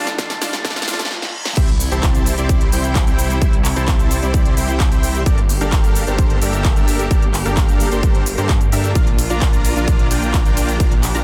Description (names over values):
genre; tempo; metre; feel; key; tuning
EDM, festival progressive house; 130 BPM; 4/4; straight; unclear; A4 = 440 Hz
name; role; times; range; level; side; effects
clean electric guitar; accompaniment; 0.0-1.1 s; A2 to A4; -31 LUFS; equal; sidechain pumping, dub echo
clear studio string section; sustained chords; 0.0-11.2 s; A2 to G4; -29 LUFS; equal; sidechain pumping
dense compressed supersaw; riff; 0.0-11.2 s; C4 to Bb5; -25 LUFS; equal; vintage 12-bit sampler grit, sidechain pumping, dub echo
riser, reverse cymbal and impact; sound effects; 0.0-3.4 s; none; -33 LUFS; equal; none
big-room dance drum kit; drums; 0.1-11.2 s; crash cymbal, handclaps, hi-hat, ride cymbal, shaker, snare drum; -27 LUFS; equal; none
electronic kick drum; drums; 0.2-10.9 s; none; -18 LUFS; equal; none
detuned saw bass; bass; 1.6-11.2 s; G1 to G2; -23 LUFS; equal; sidechain pumping
room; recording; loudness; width
little or no reverb; dense, heavily limited modern master, high-pass filter; -17 LUFS; mono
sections
0.0-1.6 A section; 1.6-11.2 B section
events
build-up 0.0-1.6; drum fill 0.0-1.1, 1.1-1.6; reverse cymbal 0.6-1.6; drop 1.6-11.2; impact 1.6-3.4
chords
0.0 Fadd9; 1.6 C; 5.3 Gmadd9; 9.0 Bb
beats
0.18 0.65 1.11 | 1.57 2.03 2.49 2.95 | 3.42 3.88 4.34 4.80 | 5.26 5.72 6.18 6.65 | 7.11 7.57 8.03 8.49 | 8.95 9.42 9.88 10.34 | 10.80